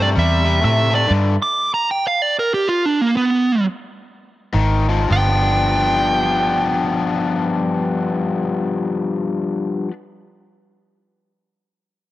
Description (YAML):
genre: electric blues shuffle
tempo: 104-130 BPM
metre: 4/4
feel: swing 63% on 8ths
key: G mixolydian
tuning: A4 = 441 Hz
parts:
  - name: dark smooth lead guitar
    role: melody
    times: 0.0-9.9 s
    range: Bb3 to D6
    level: -18 LUFS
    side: right 2 dB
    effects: overdrive
  - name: overdriven electric guitar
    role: riff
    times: 0.0-1.3, 4.5-9.9 s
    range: G2 to D4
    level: -20 LUFS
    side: left 4 dB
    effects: none
  - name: vintage muted fingered electric bass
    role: bass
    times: 0.0-1.4, 4.5-9.9 s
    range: G1 to A2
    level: -18 LUFS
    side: right 1 dB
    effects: none
room: light reverb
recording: none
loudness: -16 LUFS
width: side -15 dB against mid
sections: 0.0-5.1 A section; 5.1-9.7 B section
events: slowing down 1.1-5.1; stop 1.1-4.5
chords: 0.0 C; 1.1 G5; 4.5 Ab5; 5.1 G7